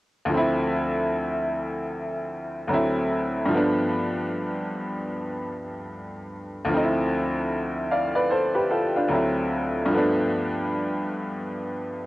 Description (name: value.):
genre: hip hop.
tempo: 75 BPM.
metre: 4/4.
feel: swing 60% on 16ths.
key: D dorian.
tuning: A4 = 441 Hz.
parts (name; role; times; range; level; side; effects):
bright upright piano; accompaniment; 0.3-12.1 s; D2 to F5; -23 LUFS; equal; cassette tape, low-pass filter.
room: moderate booth ambience, RT60 0.2 s.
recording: home recording on cassette.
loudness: -23 LUFS.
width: side -18 dB against mid.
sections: 0.3-12.1 A section.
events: none.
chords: 0.3 Dm7; 2.7 D7; 3.5 G9; 6.7 Dm7; 9.1 D7; 9.9 G9.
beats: | 0.30 1.10 1.90 2.70 | 3.50 4.30 5.10 5.90 | 6.70 7.50 8.30 9.10 | 9.90 10.70 11.50.